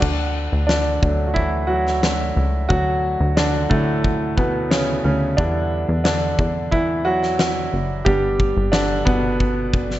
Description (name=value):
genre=piano-driven pop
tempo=90 BPM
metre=4/4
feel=straight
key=D major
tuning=A4 = 440 Hz
part: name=bright concert grand piano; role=accompaniment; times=0.0-10.0 s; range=A2 to G4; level=-20 LUFS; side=right 1 dB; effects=none
part: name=plucky analog bass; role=bass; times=0.0-10.0 s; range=F#1 to E2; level=-23 LUFS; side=equal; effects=none
part: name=huge arena drum kit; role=drums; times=0.0-10.0 s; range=crash cymbal, kick drum, snare drum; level=-23 LUFS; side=equal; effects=none
room=light reverb, small room ambience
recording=nothing above 7.9 kHz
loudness=-17 LUFS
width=side -14 dB against mid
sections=0.0-10.0 A section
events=grand piano solo 0.0-10.0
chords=0.0 D; 5.4 Em; 8.1 G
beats=| 0.02 0.69 1.36 2.03 | 2.70 3.37 4.04 4.71 | 5.38 6.05 6.72 7.39 | 8.06 8.73 9.40